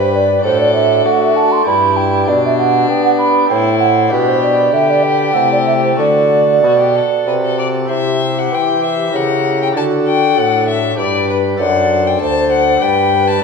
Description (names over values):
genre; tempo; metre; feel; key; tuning
classical, baroque-style sonata movement with continuo; 98 BPM; 3/4; straight; G major; A4 = 440 Hz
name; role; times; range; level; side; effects
dark violin; melody; 0.0-13.4 s; D4 to A5; -18 LUFS; left 7 dB; none
mellow hollow baroque flute; second line; 0.0-13.4 s; F#4 to C6; -15 LUFS; right 4 dB; none
pipe organ, sparkling flutes; accompaniment; 0.0-13.4 s; D2 to D5; -19 LUFS; left 2 dB; none
warm bassoon; bass; 0.0-13.4 s; D2 to B3; -18 LUFS; right 1 dB; none
room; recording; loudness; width
wet scoring stage reverb, RT60 1.7 s; minimal, uncompressed stereo recording; -11 LUFS; side -5 dB against mid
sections
0.0-7.9 A section; 7.9-13.4 B section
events
none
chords
0.4 D/A; 1.7 G; 2.3 G/B; 3.5 Am; 4.1 G/B; 5.4 Am/C; 6.0 D; 7.9 C; 9.1 C#dim7; 9.8 D; 11.0 G; 11.6 D7/F#; 12.8 G